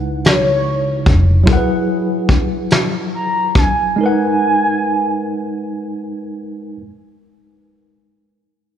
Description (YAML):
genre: slow six-eight R&B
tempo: 39-49 BPM (dotted quarters)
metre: 6/8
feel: straight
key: G# minor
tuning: A4 = 440 Hz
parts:
  - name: tine electric piano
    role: accompaniment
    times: 0.0-6.8 s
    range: C#3 to F#5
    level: -19 LUFS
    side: equal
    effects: overdrive, medium stereo tremolo, slapback echo
  - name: vintage muted fingered electric bass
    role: bass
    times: 0.0-1.4 s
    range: E#1 to C#2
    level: -15 LUFS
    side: equal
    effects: none
  - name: gliding portamento lead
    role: melody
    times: 0.2-5.8 s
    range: C#5 to A#5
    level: -18 LUFS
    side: equal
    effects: chorus, slapback echo
  - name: soft brush drum kit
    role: drums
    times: 0.2-3.8 s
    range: hi-hat, kick drum, snare drum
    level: -15 LUFS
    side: equal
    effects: none
room: light reverb, studio reverb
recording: live gig heard through the venue's PA, club reverb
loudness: -13 LUFS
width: side -9 dB against mid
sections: 0.0-6.8 A section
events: slowing down 1.5-6.8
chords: 0.0 C#m11; 1.5 F#9sus4; 4.0 G#m9